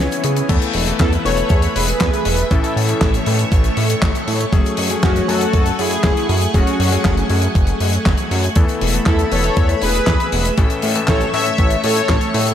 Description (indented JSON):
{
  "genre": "italo disco",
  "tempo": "119 BPM",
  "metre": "4/4",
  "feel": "straight",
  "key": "unclear",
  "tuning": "A4 = 440 Hz",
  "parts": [
    { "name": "string machine, full ensemble", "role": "sustained chords", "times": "0.0-12.5 s", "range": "A3 to E6", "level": "-24 LUFS", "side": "right 1 dB", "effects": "ensemble chorus" },
    { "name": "warm electric grand piano", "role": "stabs", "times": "0.0-12.5 s", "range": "A2 to G#5", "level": "-25 LUFS", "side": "left 5 dB", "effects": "ping-pong delay" },
    { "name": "chorused synth bass", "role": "bass", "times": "0.0-12.5 s", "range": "E1 to C#3", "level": "-19 LUFS", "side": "equal", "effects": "none" },
    { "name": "damped 70s drum kit", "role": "drums", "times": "0.1-12.5 s", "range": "cabasa, crash cymbal, handclaps, hi-hat, snare drum", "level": "-22 LUFS", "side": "left 2 dB", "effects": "studio reverb, gated reverb" },
    { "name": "electronic kick drum", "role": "drums", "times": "0.5-12.2 s", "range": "none", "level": "-16 LUFS", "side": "equal", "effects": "studio reverb" },
    { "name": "analog synth brass", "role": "melody", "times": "1.0-12.5 s", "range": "C#4 to E5", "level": "-20 LUFS", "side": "left 1 dB", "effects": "chorus, tape echo" }
  ],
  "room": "studio reverb",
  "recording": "none",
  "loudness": "-14 LUFS",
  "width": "side -10 dB against mid",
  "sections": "0.5-12.5 A section",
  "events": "break 0.0-0.5",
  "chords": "0.5 Esus4; 2.5 A; 4.5 F#madd9; 8.6 Esus4; 10.6 A"
}